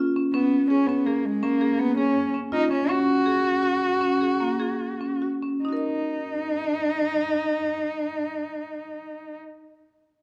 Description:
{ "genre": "contemporary instrumental, contemporary", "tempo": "140-166 BPM", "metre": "7/4", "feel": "straight", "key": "Eb minor", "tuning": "A4 = 440 Hz", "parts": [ { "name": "marimba with medium hard mallets", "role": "arpeggios", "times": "0.0-9.7 s", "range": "Bb3 to Eb5", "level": "-26 LUFS", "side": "equal", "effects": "none" }, { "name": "dark cello", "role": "melody", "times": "0.3-9.4 s", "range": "Ab3 to Gb4", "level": "-27 LUFS", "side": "equal", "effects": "none" } ], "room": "moderate recital hall reverb, RT60 1.8 s", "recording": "none", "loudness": "-24 LUFS", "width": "mono", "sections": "0.0-5.6 A section; 5.6-8.6 B section", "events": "slowing down 2.5-5.6", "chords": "0.0 Bbm7; 2.9 Gbsus2; 5.6 Ebm" }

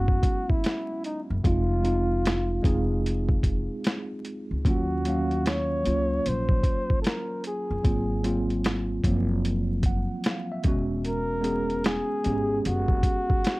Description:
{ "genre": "lo-fi hip hop", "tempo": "75 BPM", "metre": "4/4", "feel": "swing 62% on 16ths", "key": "unclear", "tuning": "A4 = 439 Hz", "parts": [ { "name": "breathy flugelhorn", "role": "melody", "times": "0.0-13.6 s", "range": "Eb4 to Db5", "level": "-30 LUFS", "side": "equal", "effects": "low-pass filter" }, { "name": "mellow tine electric piano", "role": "accompaniment", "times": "0.0-13.6 s", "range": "F3 to Gb5", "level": "-29 LUFS", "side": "right 1 dB", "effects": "medium stereo tremolo, low-pass filter" }, { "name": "upright bass", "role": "bass", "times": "0.0-13.0 s", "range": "E1 to Eb2", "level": "-28 LUFS", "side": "equal", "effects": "none" }, { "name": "boom bap sampler-style drum kit", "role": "drums", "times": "0.1-13.6 s", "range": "finger snaps, hi-hat, kick drum, snare drum", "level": "-25 LUFS", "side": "equal", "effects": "none" } ], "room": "light reverb", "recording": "vinyl crackle", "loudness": "-23 LUFS", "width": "side -21 dB against mid", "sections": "0.0-13.6 A section", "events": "none", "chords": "0.0 E6; 1.4 Dbmaj9/F (rootless); 4.6 Ebm9; 7.8 Ab13; 10.6 E6" }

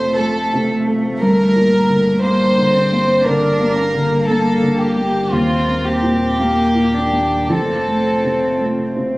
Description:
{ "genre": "neoclassical piano and strings", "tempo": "54-59 BPM", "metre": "4/4", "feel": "rubato", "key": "G minor", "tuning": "A4 = 440 Hz", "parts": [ { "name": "warm studio violin section", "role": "melody", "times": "0.0-8.6 s", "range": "F4 to C5", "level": "-18 LUFS", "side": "equal", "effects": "none" }, { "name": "warm cello", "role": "second line", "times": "0.0-9.1 s", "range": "A3 to D4", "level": "-21 LUFS", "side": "right 1 dB", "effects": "none" }, { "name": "felt-muted upright piano", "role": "accompaniment", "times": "0.0-9.2 s", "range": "Eb2 to Bb3", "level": "-18 LUFS", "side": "equal", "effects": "none" }, { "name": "chorused pulse-width pad", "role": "sustained chords", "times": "0.0-9.2 s", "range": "A3 to C5", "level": "-27 LUFS", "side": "equal", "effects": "none" }, { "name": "punchy sub bass", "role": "bass", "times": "0.0-9.2 s", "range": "F1 to Eb2", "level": "-28 LUFS", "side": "equal", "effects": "none" } ], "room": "wet scoring stage reverb, RT60 1.5 s", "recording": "recorded on a phone in the room, club reverb", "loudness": "-14 LUFS", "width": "side -20 dB against mid", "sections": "0.0-9.2 A section", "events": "none", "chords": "0.0 F; 1.2 Gm; 5.3 Eb; 7.5 F" }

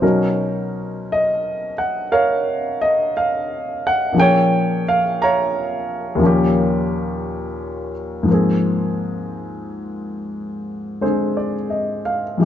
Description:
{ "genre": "jazz ballad", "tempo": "58 BPM", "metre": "4/4", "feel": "swing 67% on 8ths", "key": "unclear", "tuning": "A4 = 443 Hz", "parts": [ { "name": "clear grand piano", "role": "solo", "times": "0.0-12.4 s", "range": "Eb2 to Bb5", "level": "-17 LUFS", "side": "equal", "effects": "none" } ], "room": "moderate echo chamber reverb, RT60 1.6 s", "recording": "nothing above 7.8 kHz", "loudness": "-17 LUFS", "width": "side -10 dB against mid", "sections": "0.0-12.4 A section", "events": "none", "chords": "0.0 Bmaj9; 4.1 Bbm7; 6.2 Eb9; 8.3 Ab6" }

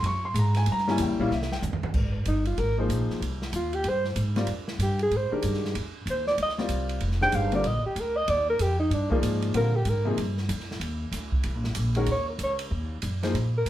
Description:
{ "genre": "modal jazz", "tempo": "189 BPM", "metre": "4/4", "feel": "swing 63% on 8ths", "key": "F dorian", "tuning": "A4 = 438 Hz", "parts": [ { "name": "warm baby grand piano", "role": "accompaniment", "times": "0.0-13.3 s", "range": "C3 to Db6", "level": "-28 LUFS", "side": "left 2 dB", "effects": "none" }, { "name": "upright bass", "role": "bass", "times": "0.0-13.7 s", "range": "F1 to Bb2", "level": "-28 LUFS", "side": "equal", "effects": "none" }, { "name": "open jazz drum kit", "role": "drums", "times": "0.0-13.7 s", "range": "crash cymbal, hi-hat, kick drum, ride cymbal, snare drum, toms", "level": "-34 LUFS", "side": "right 1 dB", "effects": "none" }, { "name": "dark alto saxophone", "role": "melody", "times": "2.3-10.1, 12.1-13.7 s", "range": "Bb3 to G5", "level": "-26 LUFS", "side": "right 1 dB", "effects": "none" } ], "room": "wet studio reverb, RT60 0.6 s", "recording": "heard from further back in the room", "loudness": "-24 LUFS", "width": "side -13 dB against mid", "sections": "0.0-1.9 A section; 1.9-12.1 A section; 12.1-13.7 A section", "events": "drum fill 1.3-1.9; alto saxophone solo 1.9-13.7", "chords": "0.0 Gb; 0.7 C7b9; 1.9 Fm9; 7.0 Eb/F; 12.1 Ebm7" }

